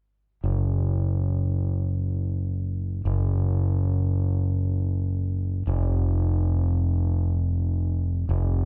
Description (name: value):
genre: rock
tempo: free time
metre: none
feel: none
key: unclear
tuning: A4 = 440 Hz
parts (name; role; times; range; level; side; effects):
- growling fingered electric bass; bass; 0.4-8.7 s; F1 to Gb1; -25 LUFS; equal; overdrive
room: wet recital hall reverb, RT60 1.3 s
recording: recorded in a church or concert hall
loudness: -25 LUFS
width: mono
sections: 0.4-8.7 A section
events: none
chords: none